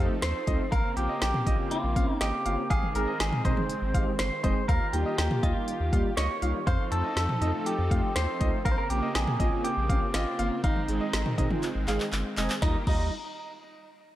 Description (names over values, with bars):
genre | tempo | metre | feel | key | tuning
synth-pop | 121 BPM | 4/4 | straight | Eb mixolydian | A4 = 440 Hz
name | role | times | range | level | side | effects
clear baby grand piano | second line | 0.0-13.1 s | Eb5 to F5 | -38 LUFS | equal | tape echo
mellow synth brass | accompaniment | 0.0-13.1 s | G3 to Bb4 | -34 LUFS | equal | chorus
brassy analog pad | sustained chords | 0.0-12.9 s | Db3 to A4 | -36 LUFS | equal | chorus
round analog bass | bass | 0.0-13.1 s | F1 to F2 | -30 LUFS | equal | none
clean electric guitar | melody | 0.2-13.1 s | Eb4 to Db5 | -31 LUFS | equal | spring reverb
deep house drum kit | drums | 0.2-13.0 s | cowbell, crash cymbal, handclaps, hi-hat, kick drum, snare drum, toms | -29 LUFS | equal | gated reverb
room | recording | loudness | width
little or no reverb | none | -25 LUFS | side -14 dB against mid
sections
0.0-12.6 A section; 12.6-14.2 B section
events
drum fill 11.6-12.6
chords
0.0 F7; 0.7 Bbmadd9; 2.7 Ab; 4.7 Ebadd9; 6.7 F7; 8.7 Bbmadd9; 10.6 Ab; 12.6 Ebadd9